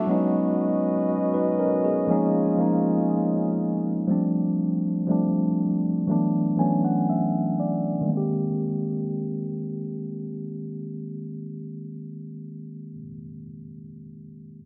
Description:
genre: R&B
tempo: 60 BPM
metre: 4/4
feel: straight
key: Ab major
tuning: A4 = 440 Hz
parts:
  - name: mellow tine electric piano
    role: accompaniment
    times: 0.0-14.6 s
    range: Eb3 to Ab5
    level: -26 LUFS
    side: equal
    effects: low-pass filter
  - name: mellow French horn section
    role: sustained chords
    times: 0.0-4.1 s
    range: Db4 to Eb5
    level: -29 LUFS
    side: equal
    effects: low-pass filter
room: light reverb, digital ambience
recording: none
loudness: -25 LUFS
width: mono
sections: 0.0-8.1 A section; 8.1-12.1 B section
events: filter sweep 0.0-8.1; tine electric piano fill 6.1-8.1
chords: 0.1 Db9sus4; 2.1 Eb9sus4; 4.1 G9sus4; 6.1 E9sus4; 8.1 Abmaj9

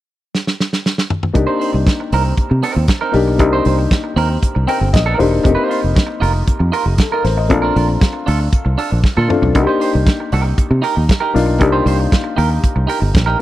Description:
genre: disco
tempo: 117 BPM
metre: 4/4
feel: straight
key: C dorian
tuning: A4 = 441 Hz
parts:
  - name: warm soul drum kit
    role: drums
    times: 0.3-13.3 s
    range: hi-hat, kick drum, snare drum, toms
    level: -16 LUFS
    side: equal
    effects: none
  - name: clean electric guitar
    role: accompaniment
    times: 1.3-13.4 s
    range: C4 to C5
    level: -21 LUFS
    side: right 5 dB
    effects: spring reverb
  - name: warm baby grand piano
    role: accompaniment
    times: 1.3-13.4 s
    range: A3 to G5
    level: -19 LUFS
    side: left 4 dB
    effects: none
  - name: fingered electric bass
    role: bass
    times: 1.4-13.3 s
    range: E1 to C3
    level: -16 LUFS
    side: equal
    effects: none
room: small room ambience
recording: dry, close 1970s-style studio recording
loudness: -13 LUFS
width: side -14 dB against mid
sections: 0.0-1.4 A section; 1.4-13.4 B section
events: drum fill 0.3-1.4, 9.0-9.6; grand piano fill 4.4-5.5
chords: 0.0 N.C.; 1.4 Cm7; 5.5 F7sus4; 7.5 Bbmaj7; 9.6 Cm7

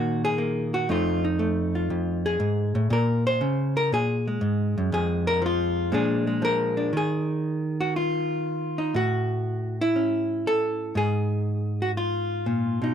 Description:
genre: solo jazz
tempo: 119 BPM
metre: 4/4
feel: swing 69% on 8ths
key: Bb minor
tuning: A4 = 440 Hz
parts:
  - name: hollow-body jazz guitar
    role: solo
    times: 0.0-12.9 s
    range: F2 to C5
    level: -23 LUFS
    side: equal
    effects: none
room: light reverb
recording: dry, close 1970s-style studio recording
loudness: -23 LUFS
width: side -8 dB against mid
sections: 0.0-6.9 A section; 6.9-12.9 B section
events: hollow-body jazz guitar solo 0.0-6.9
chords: 0.0 Eb5; 0.9 F7#9; 2.9 Bbm9; 4.9 Fmadd11; 5.9 Bb7; 6.9 N.C.; 8.9 A6; 10.9 Absus2

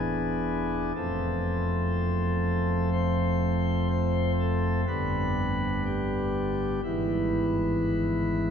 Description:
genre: classical, chorale-style piece for pipe organ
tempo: 61 BPM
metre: 4/4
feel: rubato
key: unclear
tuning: A4 = 441 Hz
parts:
  - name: pipe organ, sparkling flutes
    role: solo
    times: 0.0-8.5 s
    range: E1 to C5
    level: -25 LUFS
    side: equal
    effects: none
room: wet cathedral reverb, RT60 5.9 s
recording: recorded in a church or concert hall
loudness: -25 LUFS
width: side -7 dB against mid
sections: 0.0-8.5 A section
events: none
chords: 0.0 E7; 1.0 F; 4.9 G; 6.8 E/G#

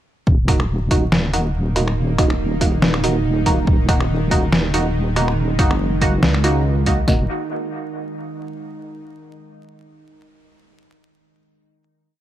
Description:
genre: deep dubstep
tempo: 141 BPM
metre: 4/4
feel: swing 55% on 16ths, half-time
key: Eb minor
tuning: A4 = 440 Hz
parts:
  - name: bowed-like drone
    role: sustained chords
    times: 1.5-7.3 s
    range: Eb3 to Eb4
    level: -26 LUFS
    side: right 2 dB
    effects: built-in reverb
  - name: deep soft wobble bass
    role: bass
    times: 0.3-7.3 s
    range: Eb1 to Db2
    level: -20 LUFS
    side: equal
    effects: chorus
  - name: deep house drum kit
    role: drums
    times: 0.3-7.2 s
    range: kick drum, snare drum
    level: -18 LUFS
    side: equal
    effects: overdrive
  - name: filtered dub chord stab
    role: stabs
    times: 0.5-7.2 s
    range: Bb3 to Gb4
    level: -24 LUFS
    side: right 2 dB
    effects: analog chorus, dub echo
  - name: trip hop sampler-style drum kit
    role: drums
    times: 0.5-7.0 s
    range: finger snaps, hi-hat, snare drum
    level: -20 LUFS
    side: equal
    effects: overdrive
room: little or no reverb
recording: vinyl crackle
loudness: -16 LUFS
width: side -12 dB against mid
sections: 0.3-7.1 drop; 7.1-8.8 final chord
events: drop 0.3-7.1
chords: 0.3 Ebm; 7.1 Eb5

